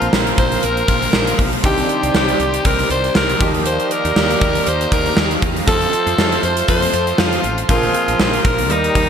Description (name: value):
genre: 1980s-style pop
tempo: 119 BPM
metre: 4/4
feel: swing 55% on 16ths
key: Eb major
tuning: A4 = 440 Hz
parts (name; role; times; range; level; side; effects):
- raspy alto saxophone; melody; 0.0-9.1 s; Eb4 to C5; -19 LUFS; left 2 dB; ping-pong delay
- biting overdriven guitar; accompaniment; 0.0-9.1 s; Bb2 to F4; -28 LUFS; left 2 dB; none
- clear concert grand piano; accompaniment; 0.0-9.1 s; Eb3 to Bb4; -25 LUFS; right 2 dB; none
- lush unison pad; sustained chords; 0.0-9.1 s; Eb4 to Eb6; -25 LUFS; right 1 dB; chorus
- warm horn section; stabs; 0.0-9.1 s; F3 to D5; -24 LUFS; right 3 dB; none
- woody fretless electric bass; bass; 0.0-9.1 s; A1 to F2; -23 LUFS; equal; none
- gated 80s drum kit; drums; 0.0-9.1 s; hi-hat, kick drum, snare drum, tambourine; -18 LUFS; equal; gated reverb
room: moderate lush hall reverb, RT60 1.6 s, small room ambience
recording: bright 1980s-style digital production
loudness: -14 LUFS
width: side -7 dB against mid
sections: 0.0-9.1 A section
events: none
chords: 0.0 Bbsus2; 1.6 Cmadd9; 3.4 Ebadd9; 5.7 F; 7.7 Bbsus2